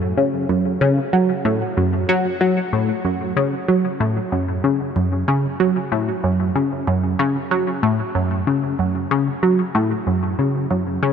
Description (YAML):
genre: ambient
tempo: 94 BPM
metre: 4/4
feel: straight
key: F# minor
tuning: A4 = 440 Hz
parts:
  - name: tight sequenced synth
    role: solo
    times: 0.0-11.1 s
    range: F#2 to F#3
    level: -17 LUFS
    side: equal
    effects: chorus, analog delay
room: moderate huge ambient reverb, RT60 7.9 s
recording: none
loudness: -17 LUFS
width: side -7 dB against mid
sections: 0.0-3.0 A section; 3.0-11.1 B section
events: none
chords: none